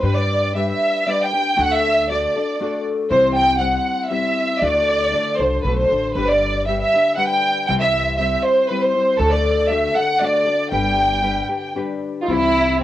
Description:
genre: mexican folk, mariachi.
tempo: 118 BPM.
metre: 3/4.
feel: rubato.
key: G major.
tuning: A4 = 441 Hz.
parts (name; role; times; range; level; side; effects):
warm symphonic violin section; melody; 0.0-12.8 s; E4 to G5; -17 LUFS; right 1 dB; cassette tape.
nylon-string guitar; accompaniment; 0.0-12.8 s; C3 to C5; -24 LUFS; left 5 dB; cassette tape.
upright bass; bass; 0.0-12.8 s; G1 to G2; -25 LUFS; equal; tube saturation.
warm trumpet; second line; 12.2-12.8 s; Eb4 to E4; -30 LUFS; right 7 dB; none.
room: moderate studio reverb, RT60 0.5 s.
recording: home recording on cassette.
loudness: -16 LUFS.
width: side -13 dB against mid.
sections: 0.0-12.3 A section.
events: none.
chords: 0.0 G; 1.6 D; 3.1 C; 4.6 D; 6.1 G; 7.7 C; 9.2 D; 10.7 G; 12.3 C.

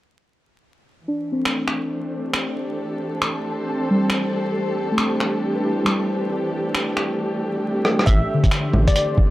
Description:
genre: future garage.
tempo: 136 BPM.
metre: 4/4.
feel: swing 65% on 16ths.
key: A minor.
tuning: A4 = 441 Hz.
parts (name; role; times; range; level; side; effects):
dark studio string section; sustained chords; 1.0-9.3 s; E3 to C5; -26 LUFS; equal; vintage 12-bit sampler grit, sidechain pumping.
backwards swelling texture; texture; 1.0-9.3 s; C4 to C5; -31 LUFS; equal; built-in reverb.
muted felt-like synth keys; accompaniment; 1.1-9.3 s; D3 to B4; -24 LUFS; left 1 dB; chorus, phaser, vintage 12-bit sampler grit, sidechain pumping, low-pass filter, tape echo.
lo-fi sampler-style drum kit; drums; 1.5-9.1 s; bongos, finger snaps, hi-hat, rim click; -23 LUFS; equal; none.
glassy wavetable pluck; melody; 8.1-9.3 s; D5 to E5; -25 LUFS; left 1 dB; chorus, tape echo.
dark detuned saw bass; bass; 8.1-8.9 s; A1; -19 LUFS; equal; sidechain pumping.
electronic kick drum; drums; 8.1-9.3 s; none; -17 LUFS; equal; none.
room: light reverb.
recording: dry, gritty hardware recording, vinyl crackle.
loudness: -19 LUFS.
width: side -16 dB against mid.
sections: 1.0-8.1 A section; 8.1-9.3 B section.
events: filter sweep on synth keys 1.0-8.1; drum fill 7.9.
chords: 1.0 Am7.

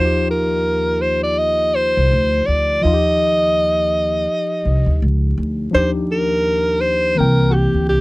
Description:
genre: hip hop, jazz-hop.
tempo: 83 BPM.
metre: 4/4.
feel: swing 57% on 16ths.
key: Eb major.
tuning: A4 = 441 Hz.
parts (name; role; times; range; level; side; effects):
breathy alto saxophone; melody; 0.0-8.0 s; Gb4 to Eb5; -17 LUFS; equal; none.
tine electric piano; accompaniment; 0.0-8.0 s; Eb3 to G5; -22 LUFS; left 2 dB; medium stereo tremolo.
upright bass; bass; 0.0-8.0 s; C2 to Eb2; -20 LUFS; equal; none.
room: little or no reverb.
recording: dry, close 1970s-style studio recording, vinyl crackle.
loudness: -15 LUFS.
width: side -21 dB against mid.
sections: 0.0-5.7 A section; 5.7-8.0 A section.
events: none.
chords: 0.0 Ebmaj9; 7.2 C7.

